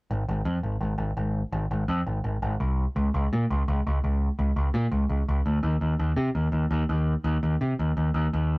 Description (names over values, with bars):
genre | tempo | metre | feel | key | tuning
punk | 168 BPM | 4/4 | straight | unclear | A4 = 440 Hz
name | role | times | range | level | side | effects
growling picked electric bass | bass | 0.1-8.6 s | Ab1 to C3 | -24 LUFS | equal | overdrive
room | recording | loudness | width
light reverb | rough rehearsal-room recording, warm saturation | -24 LUFS | side -26 dB against mid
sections
0.1-8.6 A section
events
none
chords
none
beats
| 0.10 0.46 0.81 1.17 | 1.53 1.89 2.24 2.60 | 2.96 3.31 3.67 4.03 | 4.39 4.74 5.10 5.46 | 5.82 6.17 6.53 6.89 | 7.25 7.60 7.96 8.32